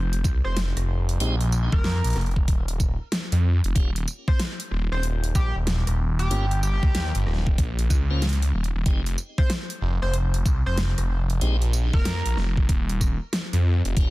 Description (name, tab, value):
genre	glitch hop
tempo	94 BPM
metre	4/4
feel	swing 64% on 16ths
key	F minor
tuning	A4 = 440 Hz
part	phased detuned saw bass	bass	0.0-14.1 s	Eb1 to F2	-23 LUFS	equal	phaser, tube saturation
part	dubstep drum kit	drums	0.1-14.1 s	hi-hat, rim click, snare drum, tambourine	-30 LUFS	equal	overdrive
part	electronic kick drum	drums	0.2-14.1 s	none	-22 LUFS	equal	overdrive
part	sync lead	melody	0.4-12.4 s	G4 to C5	-33 LUFS	equal	lush chorus, digital delay
part	tonewheel organ	stabs	1.2-14.1 s	Ab3 to C5	-34 LUFS	equal	overdrive, slow rotary speaker, sidechain pumping, digital delay
room	little or no reverb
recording	dense, heavily limited modern master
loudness	-21 LUFS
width	side -19 dB against mid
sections	0.0-14.1 A section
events	none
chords	0.0 F7(no3); 3.8 Eb7; 8.9 F7(no3)